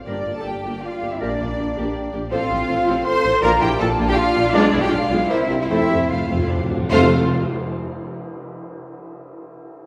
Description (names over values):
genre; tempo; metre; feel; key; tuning
classical, dramatic, fast romantic movement for symphony orchestra; 146-163 BPM; 3/4; rubato; F major; A4 = 440 Hz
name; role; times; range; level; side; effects
warm symphonic violin section; melody; 0.0-7.1 s; C5 to D5; -36 LUFS; equal; none
concert harp; arpeggios; 0.0-8.1 s; G2 to A5; -35 LUFS; equal; none
clear symphonic violin section; second line; 0.1-7.1 s; D5 to C6; -34 LUFS; equal; none
flute section; second line; 0.1-7.1 s; D5 to C6; -29 LUFS; equal; none
warm clarinet; second line; 0.1-7.1 s; Bb4 to D5; -33 LUFS; equal; none
mellow bassoon; accompaniment; 0.1-7.1 s; F3 to Bb3; -32 LUFS; equal; none
warm symphonic viola section; accompaniment; 0.1-7.1 s; G3 to Bb4; -28 LUFS; equal; none
warm French horn section; sustained chords; 0.1-7.1 s; Bb3 to A4; -30 LUFS; equal; none
dark trumpet; stabs; 0.1-7.1 s; D4 to C5; -28 LUFS; equal; none
rich symphonic double bass section; bass; 0.1-7.1 s; G1 to F2; -30 LUFS; equal; none
warm symphonic cello section; bass; 0.1-7.1 s; D4 to C5; -27 LUFS; equal; none
warm tuba; bass; 0.1-7.1 s; F1 to C2; -32 LUFS; equal; none
cymbal swell and tam-tam; percussion; 4.5-8.5 s; none; -35 LUFS; equal; none
timpani; percussion; 5.7-7.1 s; F2; -27 LUFS; equal; none
room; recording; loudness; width
wet scoring stage reverb, RT60 2.0 s; heard from further back in the room; -19 LUFS; mono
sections
0.0-6.9 A section; 6.9-8.1 B section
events
timpani fill 5.7-6.9; band accent 6.9-7.3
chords
0.1 Gm; 1.2 Gm/Bb; 2.3 F/A; 3.4 Bb; 4.5 Bdim7; 5.3 C7; 5.7 F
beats
| 0.08 0.45 0.83 | 1.21 1.58 1.95 | 2.32 2.69 3.06 | 3.43 3.80 4.17 | 4.54 4.92 5.30 | 5.70 6.10 6.51 | 6.92 7.32 7.73